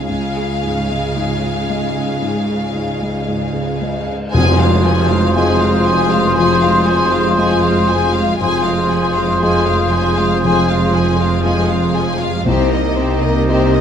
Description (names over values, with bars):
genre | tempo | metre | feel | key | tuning
cinematic, emotional film score for orchestra | 58 BPM | 4/4 | uneven beats, rubato | F minor | A4 = 440 Hz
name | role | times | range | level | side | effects
warm symphonic violin section | melody | 0.0-13.8 s | C5 to Ab5 | -22 LUFS | left 6 dB | none
warm symphonic violin section | second line | 0.0-13.8 s | F4 to Bb4 | -27 LUFS | left 2 dB | none
felt-muted upright piano | accompaniment | 0.0-13.8 s | F1 to F5 | -22 LUFS | left 3 dB | none
warm symphonic viola section | accompaniment | 0.0-13.8 s | F3 to C4 | -24 LUFS | right 2 dB | none
mellow French horn section | sustained chords | 0.0-13.8 s | Ab3 to F4 | -23 LUFS | left 4 dB | none
rich symphonic cello section | bass | 0.0-13.8 s | F2 to Db3 | -22 LUFS | right 3 dB | none
rich symphonic double bass section | bass | 0.0-13.8 s | F1 to Db2 | -22 LUFS | right 4 dB | none
cymbal swell and tam-tam | percussion | 0.1-8.4 s | none | -26 LUFS | left 2 dB | none
clear clarinet | second line | 4.3-13.8 s | G4 to Ab4 | -25 LUFS | right 1 dB | none
mellow hollow concert flute | second line | 4.3-13.8 s | Bb5 to C6 | -23 LUFS | left 1 dB | none
warm oboe | second line | 4.3-13.8 s | C5 to Eb5 | -22 LUFS | right 1 dB | none
timpani | percussion | 4.3-5.8, 12.5-13.8 s | F2 to C3 | -21 LUFS | left 1 dB | none
room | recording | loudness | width
moderate scoring stage reverb, RT60 1.7 s | none | -13 LUFS | side -8 dB against mid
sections
0.0-4.3 A section; 4.3-13.8 B section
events
band accent 4.3-5.4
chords
0.0 Db; 4.3 Fm; 12.5 Cm7